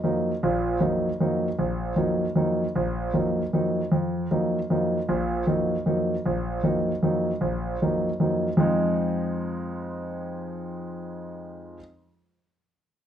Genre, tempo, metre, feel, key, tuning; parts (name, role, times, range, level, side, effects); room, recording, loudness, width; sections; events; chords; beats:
jazz; 154 BPM; 3/4; swing 66% on 8ths; A4 = 440 Hz
warm concert grand piano; solo; 0.0-11.8 s; Bb1 to Eb4; -23 LUFS; equal
light reverb; dark, warm production; -23 LUFS; side -9 dB against mid
0.0-3.9 A section; 3.9-8.6 B section; 8.6-10.9 C section
0.0 Ebm; 8.6 Fm7
0.03 | 0.42 0.81 1.20 | 1.58 1.97 2.36 | 2.75 3.14 3.53 | 3.91 4.30 4.69 | 5.08 5.47 5.86 | 6.25 6.63 7.02 | 7.41 7.80 8.19 | 8.58 8.97 9.36 | 9.75 10.14 10.53